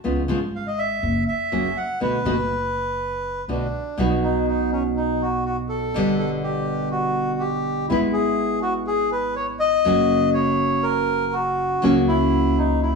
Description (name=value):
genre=tango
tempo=122 BPM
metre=4/4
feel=rubato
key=B minor, B major from 4.0 s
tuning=A4 = 439 Hz
part: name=nylon-string guitar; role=accompaniment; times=0.0-13.0 s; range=B2 to F#4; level=-22 LUFS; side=equal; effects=none
part: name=upright bass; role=bass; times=0.0-13.0 s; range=F#1 to C#2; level=-29 LUFS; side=equal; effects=none
part: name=bandoneon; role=melody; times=0.6-12.9 s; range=B3 to F#5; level=-23 LUFS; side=left 1 dB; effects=none
room=wet stone room reverb, RT60 1.1 s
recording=band playing live in one room, small room ambience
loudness=-19 LUFS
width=side -4 dB against mid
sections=0.0-4.0 A section; 4.0-13.0 B section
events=none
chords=0.0 C#7; 1.0 Esus2/F#; 1.5 F#; 2.0 Bm7; 4.0 B; 6.0 G; 7.9 E/G#; 9.9 F#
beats=| 0.04 0.53 1.02 1.51 | 2.00 2.50 2.99 3.48 | 3.98 4.47 4.97 5.46 | 5.95 6.44 6.93 7.42 | 7.91 8.39 8.88 9.37 | 9.86 10.35 10.84 11.33 | 11.83 12.32 12.81